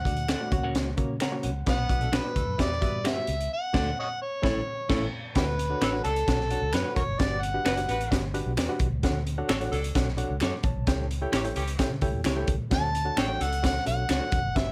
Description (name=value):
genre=uptempo 1960s-style soul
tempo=130 BPM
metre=4/4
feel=straight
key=D major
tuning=A4 = 440 Hz
part: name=overdriven harmonica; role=melody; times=0.0-8.1, 12.7-14.7 s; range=E4 to A5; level=-32 LUFS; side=equal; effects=none
part: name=reed electric piano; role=accompaniment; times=0.1-14.7 s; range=G3 to D6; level=-36 LUFS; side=equal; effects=fast tremolo
part: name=vintage muted fingered electric bass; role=bass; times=0.1-14.7 s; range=E1 to C#3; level=-34 LUFS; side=equal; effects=none
part: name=crunchy breakbeat drum kit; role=drums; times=0.1-14.7 s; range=crash cymbal, hi-hat, kick drum, snare drum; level=-31 LUFS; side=equal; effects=none
part: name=electric guitar at the edge of break-up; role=stabs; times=0.3-14.2 s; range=D4 to F#5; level=-35 LUFS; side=equal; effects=none
part: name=finger snaps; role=percussion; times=0.3-14.2 s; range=none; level=-38 LUFS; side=equal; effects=none
part: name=clear saxophone section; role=second line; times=1.7-3.0, 5.8-13.7 s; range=E3 to B4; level=-38 LUFS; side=equal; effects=none
room=light reverb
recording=none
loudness=-27 LUFS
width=mono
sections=0.0-5.4 A section; 5.4-14.7 B section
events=reed electric piano fill 1.0-1.7; band accent 3.5-5.4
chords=0.0 D; 0.5 F#/C#; 1.7 Bm; 2.6 Emadd9; 3.5 D; 4.2 A; 5.4 Dmaj7; 7.2 Gmaj7; 9.0 Dmaj7; 10.9 A7; 12.7 Dmaj7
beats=0.29 0.75 1.21 | 1.67 2.13 2.59 3.05 | 3.52 3.98 4.44 4.90 | 5.36 5.82 6.28 6.74 | 7.20 7.66 8.12 8.57 | 9.03 9.49 9.95 10.41 | 10.87 11.33 11.79 12.25 | 12.71 13.18 13.64 14.10 | 14.56